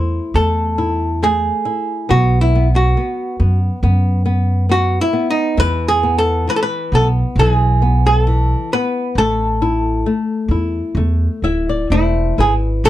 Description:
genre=fado-style ballad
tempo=68 BPM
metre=4/4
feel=rubato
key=A harmonic minor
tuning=A4 = 440 Hz
part: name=archtop guitar, miked and amplified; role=melody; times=0.0-12.9 s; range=D#4 to C5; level=-17 LUFS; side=right 1 dB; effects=none
part: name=flamenco guitar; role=accompaniment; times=0.0-12.9 s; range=E3 to E5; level=-22 LUFS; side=left 4 dB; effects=none
part: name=upright bass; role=bass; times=0.0-12.9 s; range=D1 to F#2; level=-16 LUFS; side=equal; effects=none
part: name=picked twelve-string acoustic guitar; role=second line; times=12.9 s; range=A3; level=-19 LUFS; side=right 5 dB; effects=none
room=light reverb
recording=dark, warm production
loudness=-14 LUFS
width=side -14 dB against mid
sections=0.0-12.9 A section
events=nylon-string guitar fill 11.0-12.9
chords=0.0 A5; 2.1 B5; 5.6 E5; 9.2 A5

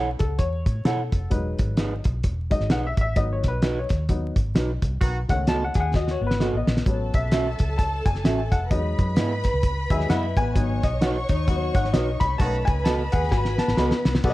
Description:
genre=uptempo 1960s-style soul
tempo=130 BPM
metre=4/4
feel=swing 59% on 8ths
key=E major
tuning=A4 = 436 Hz
part: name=clear upright piano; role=accompaniment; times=0.0-14.3 s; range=D#3 to B5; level=-29 LUFS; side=left 2 dB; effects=none
part: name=mellow electric guitar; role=stabs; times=0.0-13.9 s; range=B3 to F#5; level=-28 LUFS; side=right 3 dB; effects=none
part: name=vintage muted fingered electric bass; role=bass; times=0.0-14.3 s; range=E1 to B2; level=-26 LUFS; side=equal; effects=none
part: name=cloth-damped thuddy drum kit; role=drums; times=0.2-14.3 s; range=crash cymbal, hi-hat, kick drum, snare drum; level=-23 LUFS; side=equal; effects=none
part: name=clear horn section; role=second line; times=5.0-5.2, 12.4-12.6 s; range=D#3 to F#4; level=-32 LUFS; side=right 2 dB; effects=none
part: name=electric guitar at the edge of break-up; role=riff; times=5.8-6.8, 9.9-14.2 s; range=B3 to G#4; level=-30 LUFS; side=left 7 dB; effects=none
part: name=warm studio string section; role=second line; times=6.9-14.3 s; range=D#4 to C#6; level=-30 LUFS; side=equal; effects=none
room=studio ambience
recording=dark, warm production, vinyl crackle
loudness=-21 LUFS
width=side -17 dB against mid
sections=0.0-14.2 A section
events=upright piano solo 0.0-14.2; band accent 5.0-6.9, 12.4-14.2; drum fill 5.9-6.9, 13.3-14.2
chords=0.0 A6; 1.3 Emaj7; 3.2 G#m7; 5.0 B7; 6.9 A6; 8.7 Emaj7; 10.6 G#m7; 12.4 B7

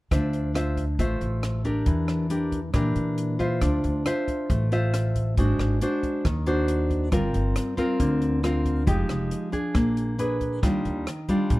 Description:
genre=bossa nova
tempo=137 BPM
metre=4/4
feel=straight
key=D minor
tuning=A4 = 439 Hz
part: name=nylon-string guitar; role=accompaniment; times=0.1-11.6 s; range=Bb2 to E5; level=-25 LUFS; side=equal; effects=none
part: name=upright bass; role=bass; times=0.1-11.6 s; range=F1 to Bb2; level=-26 LUFS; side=equal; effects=none
part: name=compact cocktail drum kit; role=drums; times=0.1-11.6 s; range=hi-hat, kick drum, rim click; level=-28 LUFS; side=equal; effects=none
room=little or no reverb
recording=dark, warm production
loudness=-22 LUFS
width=side -19 dB against mid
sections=0.1-3.6 A section; 3.6-11.6 B section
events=none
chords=0.1 Dm9; 1.9 Em7b5; 3.6 Dm9; 5.4 G#7#11; 7.1 Gm7; 8.9 Fm9; 9.8 Bb7b9; 10.6 Ebmaj9

